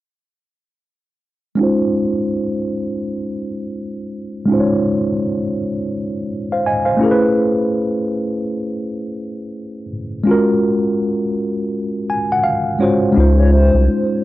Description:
lo-fi hip hop; 83 BPM; 4/4; swing 57% on 16ths; Db major; A4 = 440 Hz
mellow tine electric piano; accompaniment; 1.6-14.2 s; Ab3 to Ab5; -16 LUFS; equal; medium stereo tremolo, low-pass filter
saturated sub bass; bass; 13.2-13.9 s; C2 to Db2; -12 LUFS; equal
hollow clarinet-like synth lead; melody; 13.4-14.1 s; C5 to Db5; -20 LUFS; left 1 dB; chorus, tape echo
moderate spring reverb, RT60 1.2 s, digital ambience; dry, gritty hardware recording, cassette tape; -15 LUFS; side -16 dB against mid
1.6-13.2 A section; 13.2-14.2 B section
filter sweep on tine electric piano 1.6-13.2; tine electric piano fill 11.7-13.2
1.6 Dbmaj9; 7.0 Amaj9; 10.3 Gbmaj9; 13.2 Dbmaj9

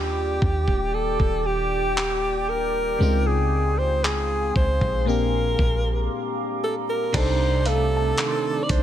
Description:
contemporary R&B; 58 BPM; 4/4; straight; A4 = 441 Hz
breathy alto saxophone; melody; 0.0-8.8 s; G4 to D5; -25 LUFS; right 1 dB
FM electric piano; accompaniment; 0.0-8.8 s; Bb2 to A4; -29 LUFS; left 2 dB; chorus, phaser
deep dark ambient pad; sustained chords; 0.0-8.8 s; G4 to D6; -30 LUFS; equal; chorus, built-in reverb, sidechain pumping
clean 808-style bass; bass; 0.0-8.8 s; Eb1 to Eb2; -25 LUFS; equal
dusty soul sampler-style drum kit; drums; 0.4-8.8 s; crash cymbal, handclaps, hi-hat, kick drum; -25 LUFS; equal; vintage 12-bit sampler grit
direct-recorded clean electric guitar; arpeggios; 7.1-8.8 s; C3 to D4; -29 LUFS; right 7 dB; tremolo
soft round pluck; texture; 7.7-8.8 s; F5 to C6; -34 LUFS; left 2 dB; chorus, ping-pong delay
digital ambience; -20 LUFS; side -11 dB against mid
0.0-7.1 A section; 7.1-8.8 B section
break 6.1-7.1
0.0 Ebmaj7; 3.0 Dbmaj7; 5.1 Bb6; 7.1 Cm69

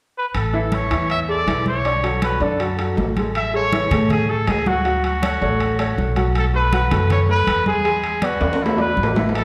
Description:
latin, salsa; 160 BPM; 4/4; straight; A major; A4 = 439 Hz
clear trumpet; melody; 0.2-9.4 s; E4 to E5; -24 LUFS; equal
upright bass; bass; 0.3-9.4 s; A1 to A2; -24 LUFS; equal
congas; percussion; 0.3-9.4 s; -29 LUFS; equal
timbales; percussion; 0.3-9.4 s; -29 LUFS; equal
bright upright piano; accompaniment; 0.5-9.4 s; D3 to G#5; -26 LUFS; equal
wet recital hall reverb, RT60 1.4 s; recorded in a church or concert hall; -19 LUFS; mono
0.3-3.4 A section; 3.4-9.4 B section
drum fill 8.4-9.4
0.3 Amaj7; 1.9 Bm9; 3.4 Amaj7; 4.9 Dmaj7; 6.4 B5; 7.9 E7

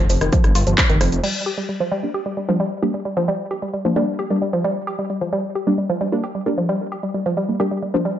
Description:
driving peak-time techno; 132 BPM; 4/4; straight; G minor; A4 = 440 Hz
woody wave-folded pluck; riff; 0.0-8.2 s; Eb3 to G4; -21 LUFS; equal; chorus, tube saturation, sidechain pumping, tape echo
detuned saw bass; bass; 0.0-1.2 s; F1 to G1; -21 LUFS; equal; sidechain pumping
techno drum kit; drums; 0.1-1.3 s; crash cymbal, handclaps, hi-hat, rim click, shaker; -23 LUFS; equal; sidechain pumping on hats, sidechain pumping on perc, sidechain pumping on cymbals
electronic kick drum; drums; 0.3-0.9 s; -18 LUFS; equal
filtered dub chord stab; stabs; 2.0-8.1 s; G3 to D4; -22 LUFS; equal; wide subtle chorus, sidechain pumping, dub echo
moderate digital room reverb, RT60 1.0 s; nothing above 7.7 kHz; -18 LUFS; side -11 dB against mid
0.0-1.2 A section; 1.2-8.2 B section
band accent 0.8
0.0 Fsus2; 1.2 Gm

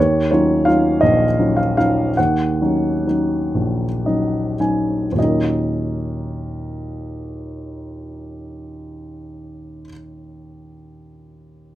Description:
classical, lyrical solo piano; 33-59 BPM (dotted quarters); 6/8; rubato; Eb minor; A4 = 441 Hz
dark concert grand piano; solo; 0.0-11.8 s; Bb1 to Ab5; -18 LUFS; equal
moderate studio ambience, RT60 0.5 s; -16 LUFS; side -14 dB against mid
0.0-5.2 A section; 5.2-11.8 B section
slowing down 0.0-5.2; grand piano fill 3.5-5.2
0.0 Ebm9; 2.2 Ebm7

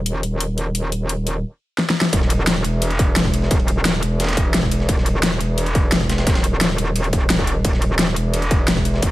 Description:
dark technical drum and bass; 174 BPM; 4/4; straight; A4 = 440 Hz
metallic wobble bass; bass; 0.0-9.1 s; Eb1 to Fb1; -20 LUFS; equal; chorus, tube saturation, sidechain pumping
dubstep drum kit; drums; 0.1-9.1 s; hi-hat, snare drum; -21 LUFS; left 1 dB; small room ambience
breakbeat sampler-style drum kit; drums; 2.1-9.1 s; hi-hat, ride cymbal, snare drum; -29 LUFS; right 1 dB; high-pass filter on cymbals, small room ambience, high-pass filter on snare, high-pass filter on hats
electronic kick drum; drums; 2.1-9.1 s; -19 LUFS; equal; distortion, small room ambience
digital ambience; -16 LUFS; side -16 dB against mid
0.0-2.1 A section; 2.1-9.1 B section
drum fill 1.8-2.1; drop 2.1-9.1

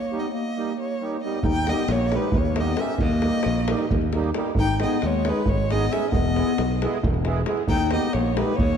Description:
balkan folk, Balkan wedding band; 268 BPM (eighths); 7/8; straight; Eb phrygian dominant; A4 = 440 Hz
warm violin; melody; 0.0-8.8 s; Cb5 to G5; -29 LUFS; equal
mellow clarinet; second line; 0.0-8.8 s; Ab3 to Eb4; -27 LUFS; left 4 dB
accordion; accompaniment; 0.1-8.5 s; G3 to Ab4; -29 LUFS; right 4 dB; light tremolo tuning
modern bright fingered electric bass; bass; 1.4-8.8 s; E1 to Eb2; -25 LUFS; equal
davul; percussion; 1.4-8.8 s; -26 LUFS; equal
moderate scoring stage reverb, RT60 1.8 s; dark, warm production; -20 LUFS; side -7 dB against mid
0.0-1.4 A section; 1.4-8.8 B section
break 0.0-1.4
0.0 Eb; 4.6 Abm; 6.1 E; 7.7 Eb

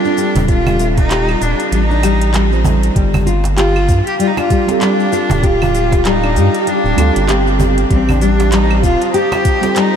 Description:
organic downtempo; 97 BPM; 4/4; swing 59% on 16ths; A4 = 440 Hz
rich cello; melody; 0.0-10.0 s; C4 to G4; -18 LUFS; equal; ping-pong delay
muted felt-like synth keys; accompaniment; 0.0-10.0 s; G3 to C5; -23 LUFS; right 4 dB; chorus, sidechain pumping, ping-pong delay
nylon-string guitar; arpeggios; 0.0-9.9 s; G3 to G4; -18 LUFS; left 3 dB; lush chorus, ping-pong delay
organic electronic drum kit; drums; 0.0-9.9 s; cabasa, claves, handclaps, hi-hat; -25 LUFS; right 1 dB
round analog bass; bass; 0.4-9.0 s; D1 to G2; -15 LUFS; equal
cajon; percussion; 0.4-9.7 s; -24 LUFS; right 3 dB
electronic kick drum; drums; 0.5-9.6 s; -15 LUFS; equal
ethereal airy pad; sustained chords; 3.7-10.0 s; G4 to Eb6; -21 LUFS; right 2 dB; ensemble chorus, built-in reverb, sidechain pumping
moderate huge ambient reverb, RT60 7.0 s; dreamy mix soaked in reverb; -11 LUFS; side -8 dB against mid
0.0-10.0 A section
0.0 Am7b5; 3.0 G5; 7.9 Am7b5

